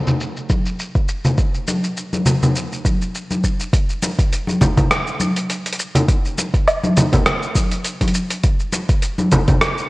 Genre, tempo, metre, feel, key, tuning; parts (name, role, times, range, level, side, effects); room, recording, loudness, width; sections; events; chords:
downtempo; 102 BPM; 4/4; swing 55% on 16ths
dusty soul sampler-style drum kit; drums; 0.1-9.9 s; hi-hat, rim click, shaker, woodblock; -22 LUFS; equal
congas; percussion; 0.1-9.6 s; -19 LUFS; equal
electronic kick drum; drums; 0.5-9.6 s; -18 LUFS; equal; overdrive
wet concert hall reverb, RT60 1.9 s; worn, warbling old tape, cassette tape, warbly pitch drift, low-pass filter; -16 LUFS; side -21 dB against mid
0.0-3.7 A section; 3.7-9.9 B section